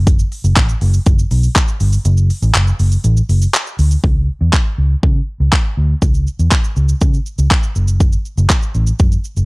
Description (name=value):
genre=dance-pop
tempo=121 BPM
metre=4/4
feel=straight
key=unclear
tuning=A4 = 439 Hz
part: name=vintage muted fingered electric bass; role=bass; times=0.0-9.4 s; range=F#1 to C#3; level=-13 LUFS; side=equal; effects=sidechain pumping
part: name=pop drum kit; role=drums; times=0.1-9.4 s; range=handclaps, hi-hat, kick drum, shaker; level=-14 LUFS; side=equal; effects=none
room=little or no reverb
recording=dry, gritty hardware recording, cassette tape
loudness=-12 LUFS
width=side -27 dB against mid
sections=0.0-4.0 A section; 4.0-9.4 B section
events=kick muted 2.1-4.0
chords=none